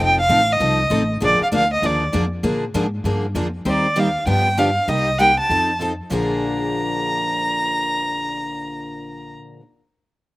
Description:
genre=acoustic string swing (jazz manouche)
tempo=196 BPM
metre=4/4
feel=swing 60% on 8ths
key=Bb mixolydian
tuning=A4 = 440 Hz
part: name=warm violin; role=melody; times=0.0-9.3 s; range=D5 to Bb5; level=-19 LUFS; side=equal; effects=none
part: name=picked steel-string acoustic guitar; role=accompaniment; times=0.0-9.6 s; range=Bb2 to C5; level=-25 LUFS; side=left 3 dB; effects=slapback echo
part: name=picked steel-string acoustic guitar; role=accompaniment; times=0.0-9.6 s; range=Bb2 to C5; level=-27 LUFS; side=right 4 dB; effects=none
part: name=upright bass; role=bass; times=0.0-9.3 s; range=F1 to Bb2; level=-24 LUFS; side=equal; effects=none
room=little or no reverb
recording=recorded outdoors, with no room sound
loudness=-17 LUFS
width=side -19 dB against mid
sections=0.0-3.7 A section; 3.7-6.1 B section; 6.1-8.6 C section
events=none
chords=0.0 F7; 1.2 Bb7; 3.7 Eb69; 4.3 G7; 4.9 Cm7; 5.5 F7; 6.1 Bb7

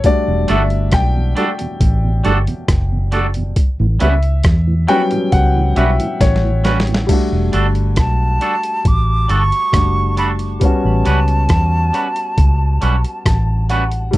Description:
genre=lovers rock reggae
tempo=68 BPM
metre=4/4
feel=straight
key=E dorian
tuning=A4 = 440 Hz
part: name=warm grand piano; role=accompaniment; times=0.0-14.2 s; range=F#3 to A5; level=-20 LUFS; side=left 2 dB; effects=none
part: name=boom bap sampler-style drum kit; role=drums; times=0.0-14.2 s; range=crash cymbal, hi-hat, kick drum, rim click, snare drum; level=-16 LUFS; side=equal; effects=none
part: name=mellow tonewheel organ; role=accompaniment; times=0.3-7.0 s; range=E2 to F#4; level=-24 LUFS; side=right 4 dB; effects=chorus vibrato, slow rotary speaker, slapback echo
part: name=vintage muted fingered electric bass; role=bass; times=0.3-14.1 s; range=E1 to E2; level=-15 LUFS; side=equal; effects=none
part: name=twangy electric guitar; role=stabs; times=0.5-13.8 s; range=G3 to B4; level=-19 LUFS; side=right 3 dB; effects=vibrato effect
part: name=hollow concert flute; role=melody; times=8.0-13.2 s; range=A5 to D6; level=-20 LUFS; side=right 1 dB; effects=tape echo
room=little or no reverb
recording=dry, close 1970s-style studio recording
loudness=-13 LUFS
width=side -17 dB against mid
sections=0.0-7.1 A section; 7.1-14.2 B section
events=grand piano solo 0.0-7.1; drum fill 6.2-7.1; grand piano fill 12.8-14.1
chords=0.0 Em11; 3.6 A13; 7.1 Em11 (rootless); 10.6 A13

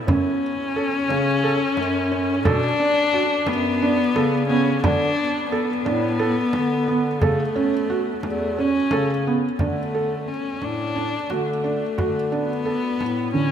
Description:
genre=contemporary instrumental, chamber music in an uneven meter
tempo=176 BPM (eighths)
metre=7/8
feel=straight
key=D major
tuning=A4 = 439 Hz
part: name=mellow bass clarinet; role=bass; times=0.0-13.5 s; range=E2 to D3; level=-26 LUFS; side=equal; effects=none
part: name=dark viola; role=second line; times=0.1-13.5 s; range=A3 to D4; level=-22 LUFS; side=left 3 dB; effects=none
part: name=felt-muted upright piano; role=arpeggios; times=0.1-13.5 s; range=D3 to A4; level=-24 LUFS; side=right 4 dB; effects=none
part: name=frame drum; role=percussion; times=0.1-13.5 s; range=none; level=-26 LUFS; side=right 1 dB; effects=none
room=wet cathedral reverb, RT60 6.7 s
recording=in a vast, echoing space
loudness=-19 LUFS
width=side -8 dB against mid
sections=0.0-9.6 A section; 9.6-13.5 B section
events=none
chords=0.1 F#m; 2.5 Bm7; 4.8 D5; 7.2 A6; 9.6 D5

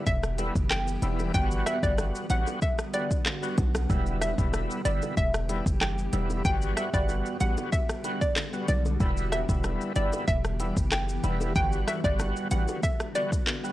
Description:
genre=dancehall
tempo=94 BPM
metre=4/4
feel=straight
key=E minor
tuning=A4 = 440 Hz
part: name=hollow square pluck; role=melody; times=0.0-13.3 s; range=D5 to G5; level=-32 LUFS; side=equal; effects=chorus, analog delay
part: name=overdriven tonewheel organ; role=accompaniment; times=0.0-13.7 s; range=G3 to F#4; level=-34 LUFS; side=equal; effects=chorus vibrato, slow rotary speaker
part: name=granular cloud pad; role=sustained chords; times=0.0-13.7 s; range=D3 to G4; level=-36 LUFS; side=equal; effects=built-in reverb, sidechain pumping
part: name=warm 808-style bass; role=bass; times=0.1-12.7 s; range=E1 to B1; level=-28 LUFS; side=equal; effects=none
part: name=afro-pop drum kit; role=drums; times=0.1-13.7 s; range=handclaps, hi-hat, kick drum, rim click, shaker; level=-28 LUFS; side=equal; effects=vintage 12-bit sampler grit
part: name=bongos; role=percussion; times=0.4-13.6 s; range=none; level=-42 LUFS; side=left 2 dB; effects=none
room=little or no reverb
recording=dry, gritty hardware recording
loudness=-25 LUFS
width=side -15 dB against mid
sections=0.0-13.7 A section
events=none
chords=0.0 Em; 1.3 Gmaj7; 3.9 Em; 6.5 Gmaj7; 9.0 Em; 11.6 Gmaj7

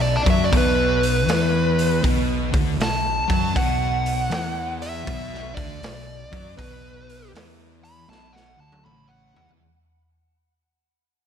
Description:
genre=blues rock power trio and southern rock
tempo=79 BPM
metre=4/4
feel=swing 66% on 8ths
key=B minor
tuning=A4 = 440 Hz
part: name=dark smooth lead guitar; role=melody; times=0.0-9.5 s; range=B4 to B5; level=-25 LUFS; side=equal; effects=overdrive
part: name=fuzz guitar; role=riff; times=0.0-9.6 s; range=A2 to F#3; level=-25 LUFS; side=left 1 dB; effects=distortion
part: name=fuzz fingered electric bass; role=bass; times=0.0-9.6 s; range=A1 to F#2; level=-27 LUFS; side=equal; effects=overdrive
part: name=raw garage drum kit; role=drums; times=0.3-9.6 s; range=hi-hat, kick drum, snare drum, toms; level=-25 LUFS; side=equal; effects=none
room=moderate lush hall reverb, RT60 2.0 s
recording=big arena sound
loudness=-19 LUFS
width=side -8 dB against mid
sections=0.0-9.6 A section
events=fade-out 0.0-9.6; lead electric guitar solo 0.0-9.6; drum fill 8.1-9.6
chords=0.0 Bm

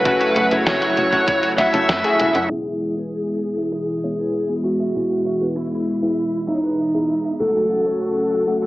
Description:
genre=synthwave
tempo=98 BPM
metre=4/4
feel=straight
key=unclear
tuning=A4 = 440 Hz
part: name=bluesy overdriven lead guitar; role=melody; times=0.0-8.7 s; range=D#4 to E5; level=-20 LUFS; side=equal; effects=distortion, slapback echo
part: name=warm analog pad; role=sustained chords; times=0.0-8.7 s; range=B2 to F#4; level=-24 LUFS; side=equal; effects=chorus
part: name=tight sequencer bass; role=bass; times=0.0-8.7 s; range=E1 to F#2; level=-32 LUFS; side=equal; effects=sidechain pumping
part: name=overdriven semi-hollow guitar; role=riff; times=0.1-8.7 s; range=E4 to F#5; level=-28 LUFS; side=equal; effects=lush chorus, low-pass filter, slapback echo, tape echo
part: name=chorused polysynth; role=stabs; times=0.1-8.6 s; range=G#3 to C#5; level=-25 LUFS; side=left 1 dB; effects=cassette tape, slapback echo
part: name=clean 12-bit digital drum machine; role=drums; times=0.1-2.5 s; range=hi-hat, snare drum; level=-24 LUFS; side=equal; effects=low-pass filter on hats, low-pass filter on snare
part: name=electronic kick drum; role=drums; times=0.1-1.4 s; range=none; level=-27 LUFS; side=equal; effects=none
room=wet lush hall reverb, RT60 2.1 s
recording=big arena sound, low-pass filter, AM radio sound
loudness=-17 LUFS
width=side -17 dB against mid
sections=0.0-2.5 A section; 2.5-8.7 B section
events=filter sweep on analog synth pad 2.5-8.7; filter sweep on overdriven electric guitar 2.5-8.7; filter sweep 2.5-8.7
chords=0.0 F#m7; 2.5 E; 7.4 F#m

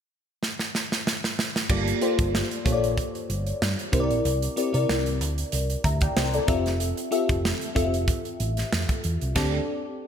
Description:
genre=polished 1980s jazz-funk pop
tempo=94 BPM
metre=4/4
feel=swing 54% on 16ths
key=G dorian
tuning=A4 = 438 Hz
part: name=modern studio drum kit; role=drums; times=0.4-9.6 s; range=crash cymbal, hi-hat, kick drum, snare drum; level=-27 LUFS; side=right 1 dB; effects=none
part: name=bell-like FM electric piano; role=accompaniment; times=1.7-10.1 s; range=Bb3 to Bb5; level=-26 LUFS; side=left 2 dB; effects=tremolo, ensemble chorus
part: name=hollow-body short-scale fingered electric bass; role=bass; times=1.7-9.6 s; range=F1 to C3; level=-27 LUFS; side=equal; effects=none
room=moderate lush hall reverb, RT60 1.8 s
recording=bright 1980s-style digital production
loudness=-23 LUFS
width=side -8 dB against mid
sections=0.0-1.7 A section; 1.7-10.1 B section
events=drum fill 0.4-1.7; band accent 9.4-10.1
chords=0.0 N.C.; 1.7 Gm9; 3.9 C9; 6.5 Fmaj9; 9.4 D7sus4

